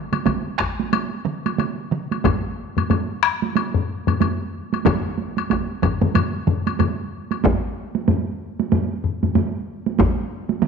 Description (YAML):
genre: japanese traditional, taiko drum ensemble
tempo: 93 BPM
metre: 4/4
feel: swing 60% on 16ths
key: none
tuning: none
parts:
  - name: solo taiko drums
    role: percussion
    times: 0.1-10.7 s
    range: none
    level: -23 LUFS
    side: right 9 dB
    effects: none
  - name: taiko ensemble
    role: percussion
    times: 0.1-10.7 s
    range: none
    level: -26 LUFS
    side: right 6 dB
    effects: none
  - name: woodblock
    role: percussion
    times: 0.1-7.4 s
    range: none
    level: -29 LUFS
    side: left 12 dB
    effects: none
  - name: taiko ensemble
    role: percussion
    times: 0.3-10.2 s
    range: none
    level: -23 LUFS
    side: left 2 dB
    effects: none
  - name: solo taiko drums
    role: percussion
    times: 2.2-9.5 s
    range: none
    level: -22 LUFS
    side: left 6 dB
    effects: none
room: wet echo chamber reverb, RT60 1.7 s, small room reverb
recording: 1960s-style stereo with parts hard left and right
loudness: -20 LUFS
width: side -6 dB against mid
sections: 0.0-7.4 A section; 7.4-10.7 B section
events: speeding up 0.0-10.7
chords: none